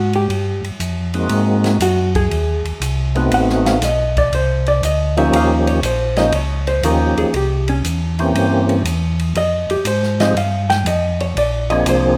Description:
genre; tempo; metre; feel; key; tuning
soul jazz organ trio; 119 BPM; 4/4; swing 68% on 8ths; Eb mixolydian; A4 = 439 Hz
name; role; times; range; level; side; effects
vintage hollow-body jazz guitar; accompaniment; 0.0-12.2 s; Db4 to G5; -21 LUFS; equal; none
mellow tonewheel organ; bass; 0.0-12.2 s; A1 to Ab2; -21 LUFS; equal; chorus vibrato, slow rotary speaker
open jazz drum kit; drums; 0.1-12.0 s; hi-hat, kick drum, ride cymbal, snare drum; -28 LUFS; equal; none
percussive tonewheel organ; melody; 1.1-12.2 s; E3 to Ab4; -20 LUFS; equal; slow rotary speaker, overdrive, chorus vibrato
room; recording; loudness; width
moderate recital hall reverb, RT60 1.6 s; none; -17 LUFS; mono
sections
0.0-12.2 A section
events
hollow-body jazz guitar solo 0.0-12.2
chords
0.0 Ebadd9; 1.3 Ab9; 3.3 Adim7; 5.3 Eb9; 7.3 C7b9; 9.4 Fm7; 11.4 Bb9

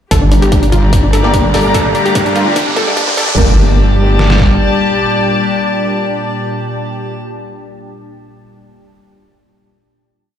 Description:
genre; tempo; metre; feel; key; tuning
heavy wobble dubstep; 147 BPM; 4/4; half-time; G minor; A4 = 441 Hz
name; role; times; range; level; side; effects
wide unison pluck; melody; 0.1-7.1 s; D4 to Bb4; -17 LUFS; equal; ping-pong delay
evolving wavetable pad; sustained chords; 0.9-7.1 s; Bb2 to A5; -19 LUFS; equal; phaser, built-in reverb, sidechain pumping
wobble bass; bass; 0.1-4.6 s; G1 to G2; -13 LUFS; equal; chorus, overdrive
dubstep drum kit; drums; 0.1-4.5 s; kick drum, snare drum; -15 LUFS; equal; none
dubstep drum kit; drums; 0.1-3.5 s; crash cymbal, hi-hat; -24 LUFS; left 2 dB; overdrive, high-pass filter on hats, high-pass filter on cymbals
riser and impact; sound effects; 1.0-7.1 s; none; -20 LUFS; right 1 dB; none
warm studio string section; texture; 0.1-7.2 s; G4 to Bb5; -18 LUFS; left 3 dB; sidechain pumping
orchestra-hit-like synth stab; stabs; 1.2-7.1 s; Bb3 to A5; -20 LUFS; left 1 dB; built-in reverb, phaser, ping-pong delay
room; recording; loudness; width
light reverb, digital ambience; played on a big sound system in a bare room, large studio reverb, high-pass filter; -10 LUFS; side -9 dB against mid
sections
0.1-3.4 build; 3.4-6.6 final chord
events
build-up 0.1-3.4; filter sweep 0.1-3.4; riser 1.0-3.4; drum fill 1.7-3.4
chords
0.1 Gmadd9

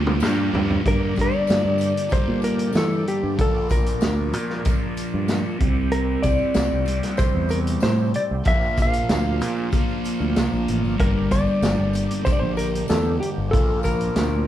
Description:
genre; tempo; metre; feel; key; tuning
psychedelic rock; 95 BPM; 4/4; straight; G dorian; A4 = 440 Hz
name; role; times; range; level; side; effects
tonewheel organ; sustained chords; 0.0-14.5 s; F3 to D5; -33 LUFS; right 2 dB; slow rotary speaker, overdrive, chorus vibrato
fuzz guitar; riff; 0.0-14.5 s; G2 to G4; -26 LUFS; left 1 dB; distortion, phaser
growling fingered electric bass; bass; 0.0-14.5 s; G1 to E3; -24 LUFS; equal; overdrive
vintage drum kit; drums; 0.1-14.3 s; hi-hat, kick drum, snare drum, toms; -24 LUFS; equal; none
tambourine; percussion; 0.2-14.3 s; none; -45 LUFS; left 6 dB; none
clean lap steel guitar; melody; 0.9-14.5 s; G4 to F5; -25 LUFS; left 1 dB; none
room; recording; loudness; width
moderate large studio reverb, RT60 1.2 s; band playing live in one room; -19 LUFS; side -12 dB against mid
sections
0.8-14.5 A section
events
drum fill 0.0-0.8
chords
0.0 Gm7; 0.8 Gm; 3.4 Bb; 5.6 C; 8.4 Bb; 11.0 Gm; 13.5 Bb

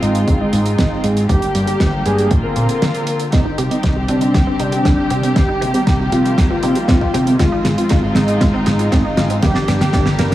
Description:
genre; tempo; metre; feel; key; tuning
italo disco; 118 BPM; 4/4; straight; C minor; A4 = 437 Hz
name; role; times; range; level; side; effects
wide unison lead; melody; 0.0-10.3 s; D4 to Bb4; -21 LUFS; equal; cassette tape, digital delay
muted studio string section; sustained chords; 0.0-10.3 s; D3 to G4; -21 LUFS; equal; none
fat analog bass; bass; 0.0-10.3 s; G1 to C3; -18 LUFS; equal; tube saturation
damped 70s drum kit; drums; 0.0-10.3 s; hi-hat, snare drum; -21 LUFS; equal; studio reverb
electronic kick drum; drums; 0.3-10.0 s; none; -19 LUFS; equal; studio reverb
wide unison pluck; arpeggios; 3.3-10.3 s; Bb3 to G4; -24 LUFS; right 2 dB; digital delay
room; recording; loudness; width
light reverb, small room ambience; heavily compressed radio sound, multiband compression; -13 LUFS; side -14 dB against mid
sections
0.0-3.3 A section; 3.3-10.3 B section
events
break 2.8-3.3; drum fill 3.3-10.3; filter sweep on synth arpeggio sound 3.3-10.3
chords
0.0 Ab6; 1.3 Gm; 2.3 Bbadd9; 3.3 Cm; 7.4 Ab6; 9.4 Gm

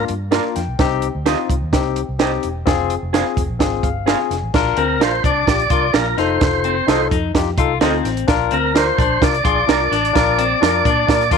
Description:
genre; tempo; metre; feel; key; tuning
uptempo 1960s-style soul; 128 BPM; 4/4; straight; unclear; A4 = 440 Hz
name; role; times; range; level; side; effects
tonewheel organ; melody; 0.0, 4.8-11.4 s; Bb4 to D5; -18 LUFS; equal; overdrive, fast rotary speaker
barky tine electric piano; accompaniment; 0.0-11.4 s; Bb3 to Bb5; -21 LUFS; left 14 dB; none
vintage muted fingered electric bass; bass; 0.0-11.4 s; E1 to Bb2; -24 LUFS; equal; none
compact cocktail drum kit; drums; 0.1-11.4 s; crash cymbal, hi-hat, kick drum, snare drum; -19 LUFS; right 4 dB; none
electric guitar through a small old amp; stabs; 0.3-10.7 s; F4 to F5; -24 LUFS; right 14 dB; slapback echo
clean electric guitar; riff; 4.8-11.4 s; C4 to F4; -24 LUFS; left 12 dB; none
dark horn section; second line; 11.1-11.4 s; Bb3 to D5; -22 LUFS; right 13 dB; none
room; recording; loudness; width
light reverb, small room ambience; 1960s-style stereo with parts hard left and right, faint mains hum; -15 LUFS; side -6 dB against mid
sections
0.0-4.5 A section; 4.5-11.4 B section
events
tine electric piano fill 0.1-0.8, 3.6-4.5; band accent 10.2-11.4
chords
0.0 Bb; 0.8 Cm; 2.7 Fm; 4.5 Bb; 6.2 F7; 8.3 Bb

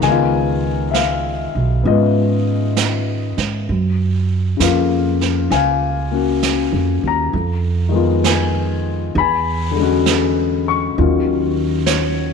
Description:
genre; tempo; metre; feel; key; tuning
jazz ballad; 66 BPM; 4/4; swing 67% on 8ths; unclear; A4 = 440 Hz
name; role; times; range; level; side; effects
warm grand piano; accompaniment; 0.0-12.3 s; Db3 to C#6; -18 LUFS; left 8 dB; none
upright bass; bass; 0.0-12.3 s; Cb2 to Ab2; -19 LUFS; right 3 dB; none
jazz brush drum kit; drums; 0.0-12.3 s; brushed snare drum, hi-hat, snare drum; -23 LUFS; right 12 dB; none
room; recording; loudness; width
moderate plate reverb, RT60 2.6 s; 1960s-style stereo with parts hard left and right; -15 LUFS; side -5 dB against mid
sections
0.0-12.3 A section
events
none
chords
0.0 Db9; 3.7 Gbmaj7; 7.3 Fm7b5; 9.1 E13; 11.0 Ebm9

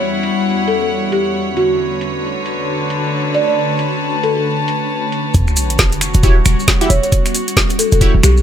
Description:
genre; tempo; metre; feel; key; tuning
UK garage, two-step garage; 135 BPM; 4/4; swing 60% on 16ths; E dorian; A4 = 440 Hz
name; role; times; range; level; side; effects
ethereal airy pad; sustained chords; 0.0-8.4 s; E2 to F#4; -22 LUFS; equal; ensemble chorus, built-in reverb, sidechain pumping
rich chamber string section; texture; 0.0-8.4 s; D3 to A5; -20 LUFS; left 2 dB; sidechain pumping
garage drum kit; drums; 0.2-8.3 s; finger snaps, hi-hat, snare drum; -18 LUFS; right 1 dB; low-pass filter on hats, low-pass filter on snare, low-pass filter on room
folk marimba with soft mallets; melody; 0.7-8.4 s; F#4 to D5; -19 LUFS; equal; ping-pong delay
short 808-style bass; bass; 5.3-8.4 s; E1 to B1; -12 LUFS; equal; none
electronic kick drum; drums; 5.3-8.1 s; none; -15 LUFS; equal; none
maracas; percussion; 5.3-8.4 s; none; -25 LUFS; left 2 dB; none
sub drop; sound effects; 5.3-7.1 s; none; -21 LUFS; equal; none
punchy chord stab; stabs; 6.2-8.1 s; E4 to E5; -20 LUFS; right 1 dB; chorus
room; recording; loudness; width
light reverb, digital ambience; none; -13 LUFS; side -9 dB against mid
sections
0.0-5.3 A section; 5.3-8.4 B section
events
filter sweep on ambient pad 0.0-5.3; drop 5.3-8.4; impact 5.3-7.1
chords
0.0 Em69; 1.6 Bm9/D; 5.3 Em69

